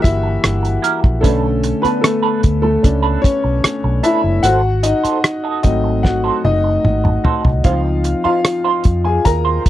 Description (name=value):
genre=lush 1970s-style soul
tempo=75 BPM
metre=4/4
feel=straight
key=unclear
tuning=A4 = 440 Hz
part: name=warm grand piano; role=accompaniment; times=0.0-9.7 s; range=D3 to Bb5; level=-17 LUFS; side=left 2 dB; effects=none
part: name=electric guitar through a small old amp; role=riff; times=0.0-9.7 s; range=D4 to D#5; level=-20 LUFS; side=right 8 dB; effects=wah, tremolo
part: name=vintage muted fingered electric bass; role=bass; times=0.0-9.6 s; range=F#1 to E#2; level=-18 LUFS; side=equal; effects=none
part: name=cloth-damped thuddy drum kit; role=drums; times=0.0-9.7 s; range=hi-hat, kick drum, rim click, snare drum, toms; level=-14 LUFS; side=equal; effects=none
room=little or no reverb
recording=dry, close 1970s-style studio recording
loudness=-13 LUFS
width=side -13 dB against mid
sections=0.0-9.7 A section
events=grand piano solo 0.0-9.7; drum fill 6.0-7.6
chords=0.0 F#7b9; 1.2 Bm7; 4.4 G#7b9; 7.6 C#maj9